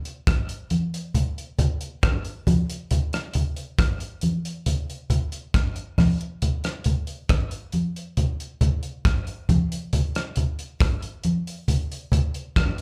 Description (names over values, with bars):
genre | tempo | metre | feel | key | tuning
reggae | 68 BPM | 4/4 | straight | none | none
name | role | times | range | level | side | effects
damped 70s drum kit | drums | 0.1-12.8 s | hi-hat, kick drum, rim click | -27 LUFS | equal | none
congas | percussion | 0.7-12.3 s | none | -25 LUFS | equal | none
room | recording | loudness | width
moderate club reverb, RT60 0.6 s | live gig heard through the venue's PA, club ambience | -25 LUFS | mono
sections
0.0-12.8 A section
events
none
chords
none